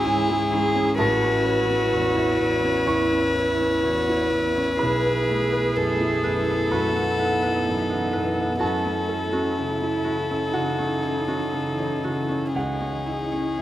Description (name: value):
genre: neoclassical piano and strings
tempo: 63 BPM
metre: 4/4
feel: rubato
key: unclear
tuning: A4 = 436 Hz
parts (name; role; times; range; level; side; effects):
- rich violin; melody; 0.0-13.6 s; G#4 to B4; -25 LUFS; left 3 dB; none
- dark cello; second line; 0.0-13.6 s; C#4 to G#4; -29 LUFS; right 4 dB; none
- clear grand piano; accompaniment; 0.0-13.6 s; A1 to C#6; -26 LUFS; equal; none
- dark viola; accompaniment; 0.0-13.6 s; D#4 to E4; -29 LUFS; right 3 dB; none
- granular cloud pad; sustained chords; 0.0-13.6 s; E3 to C#5; -37 LUFS; right 1 dB; none
- concert harp; arpeggios; 0.0-13.6 s; A3 to C#6; -31 LUFS; equal; none
room: light reverb, studio reverb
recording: rough home demo mix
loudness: -20 LUFS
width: side -13 dB against mid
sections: 0.0-13.6 A section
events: none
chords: 0.0 C#m; 1.0 Aadd9; 4.8 B7sus4; 8.6 F#m7; 12.5 C#madd9